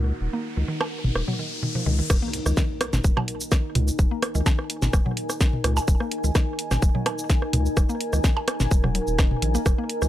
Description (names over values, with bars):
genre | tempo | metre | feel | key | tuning
minimal techno | 127 BPM | 4/4 | straight | Eb minor | A4 = 440 Hz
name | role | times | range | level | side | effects
mallet-like synth pluck | riff | 0.0-10.1 s | Bb2 to Bb3 | -32 LUFS | equal | chorus, sidechain pumping, analog delay
saturated sub bass | bass | 0.0-10.1 s | Eb1 to Db2 | -24 LUFS | equal | sidechain pumping
riser and impact | sound effects | 0.0-4.0 s | none | -35 LUFS | left 1 dB | none
deep dark ambient pad | texture | 0.0-10.1 s | Eb4 to Ab5 | -31 LUFS | left 1 dB | chorus, built-in reverb, sidechain pumping
flickering grainy texture | texture | 0.2-2.1 s | Ab3 to Gb4 | -48 LUFS | left 3 dB | none
minimal click drum kit | percussion | 0.8-10.1 s | percussion blips, rim click, toms | -27 LUFS | right 1 dB | none
electronic kick drum | drums | 2.1-9.8 s | none | -20 LUFS | equal | none
garage drum kit | drums | 2.1-10.1 s | cabasa, crash cymbal, hi-hat, snare drum | -29 LUFS | equal | none
room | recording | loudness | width
little or no reverb | dry, gritty hardware recording, transformer saturation | -21 LUFS | side -13 dB against mid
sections
0.0-2.1 A section; 2.1-10.1 B section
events
riser 0.0-2.1; filter sweep on synth arpeggio sound 0.0-2.1; drop 2.1-10.1; impact 2.1-4.0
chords
0.0 Ebsus4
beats
| 0.21 0.68 1.16 1.63 | 2.10 2.57 3.04 3.52 | 3.99 4.46 4.93 5.41 | 5.88 6.35 6.82 7.30 | 7.77 8.24 8.71 9.19 | 9.66